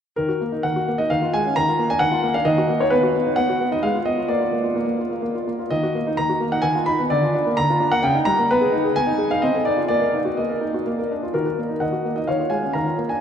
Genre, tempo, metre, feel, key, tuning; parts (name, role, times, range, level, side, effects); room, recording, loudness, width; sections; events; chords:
classical-period piano sonatina; 130 BPM; 3/4; rubato; Eb minor; A4 = 441 Hz
warm concert grand piano; solo; 0.2-13.2 s; Db3 to Cb6; -18 LUFS; equal
wet cathedral reverb, RT60 6.5 s; in a vast, echoing space; -18 LUFS; side -8 dB against mid
0.2-11.4 A section; 11.4-13.2 A section
0.2 Ebm; 1.1 Db/Eb; 1.6 Bb/Eb; 2.5 Ebm; 2.9 B; 3.8 Fdim/Ab; 4.3 Bb; 5.7 Ebm; 6.7 Fm7b5/Eb; 7.1 Bb/D; 8.0 Eb7/Db; 8.5 Abm/Cb; 9.4 F7/C; 9.9 Ebm/Bb; 10.9 Bb; 11.4 Ebm; 12.3 Db/Eb